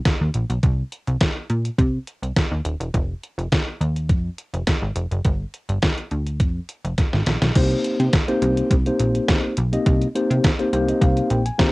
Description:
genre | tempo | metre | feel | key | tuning
early-eighties boogie funk | 104 BPM | 4/4 | straight | unclear | A4 = 440 Hz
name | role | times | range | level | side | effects
detuned 8-bit digital drum machine | drums | 0.1-11.7 s | crash cymbal, hi-hat, kick drum, snare drum | -20 LUFS | equal | cassette tape
plucky analog bass | bass | 0.2-11.5 s | Eb1 to C3 | -22 LUFS | equal | tube saturation
mellow tine electric piano | accompaniment | 7.6-11.7 s | Bb3 to Bb5 | -21 LUFS | left 1 dB | medium stereo tremolo
room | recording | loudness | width
light reverb | home recording on cassette | -19 LUFS | side -22 dB against mid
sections
0.0-7.6 A section; 7.6-11.7 B section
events
drum fill 7.0-7.6; tine electric piano fill 10.4-11.7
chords
0.0 Cm7; 2.9 F7(no3); 5.2 G5; 6.4 Fm; 7.6 Cm7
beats
0.06 | 0.63 1.21 1.79 2.37 | 2.94 3.52 4.10 4.67 | 5.25 5.83 6.40 6.98 | 7.56 8.13 8.71 9.29 | 9.87 10.44 11.02 11.60

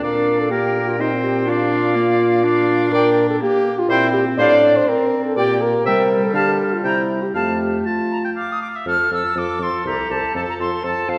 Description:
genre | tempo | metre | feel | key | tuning
quick classical-period movement for wind quintet | 123 BPM | 3/4 | straight | F major | A4 = 441 Hz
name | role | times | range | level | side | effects
silver concert flute | melody | 0.0-11.2 s | F5 to F6 | -27 LUFS | equal | none
clear oboe | second line | 0.0-11.2 s | G4 to A5 | -27 LUFS | equal | none
bright clarinet | accompaniment | 0.0-11.2 s | G3 to C5 | -26 LUFS | equal | none
clear French horn | accompaniment | 0.0-11.2 s | Eb4 to D5 | -21 LUFS | equal | none
mellow bassoon | bass | 0.0-11.2 s | C2 to D3 | -27 LUFS | equal | none
room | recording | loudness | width
wet concert hall reverb, RT60 1.9 s | heard from further back in the room | -18 LUFS | mono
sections
0.0-8.9 A section; 8.9-11.2 B section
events
none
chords
0.0 Bb; 1.0 Eb6/Bb; 1.5 Bb; 2.9 Gm/Bb; 3.9 C7/Bb; 4.4 F/A; 5.4 Gm/Bb; 5.9 C7; 6.3 Dm; 6.8 C7; 7.3 F; 9.9 C7; 10.3 F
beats
| 0.02 0.51 0.99 | 1.48 1.97 2.45 | 2.94 3.42 3.90 | 4.39 4.88 5.37 | 5.85 6.34 6.84 | 7.34 7.85 8.36 | 8.86 9.36 9.85 | 10.35 10.83

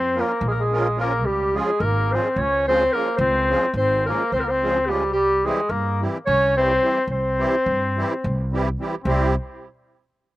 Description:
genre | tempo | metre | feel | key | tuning
balkan folk, Balkan wedding band | 215 BPM (eighths) | 7/8 | straight | C phrygian dominant | A4 = 440 Hz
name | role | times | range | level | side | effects
warm clarinet | melody | 0.0-9.3 s | G4 to Db5 | -22 LUFS | right 1 dB | slapback echo
warm flugelhorn | second line | 0.0-9.3 s | G3 to Db4 | -24 LUFS | left 3 dB | none
upright bass | bass | 0.0-9.3 s | Ab1 to G2 | -25 LUFS | equal | none
musette accordion | accompaniment | 0.1-9.4 s | E3 to Bb4 | -26 LUFS | right 2 dB | none
room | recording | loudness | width
little or no reverb | recorded outdoors, with no room sound | -19 LUFS | side -16 dB against mid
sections
0.0-9.1 A section; 9.1-10.4 B section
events
none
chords
0.0 Bbm; 1.2 Db; 5.1 C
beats
0.13 0.40 0.68 0.96 | 1.24 1.52 1.79 2.07 2.35 2.63 2.91 | 3.19 3.46 3.74 4.02 4.30 4.58 4.86 | 5.14 5.42 5.70 5.97 6.25 6.53 6.81 | 7.09 7.37 7.65 7.93 8.21 8.49 8.77 | 9.05 9.33

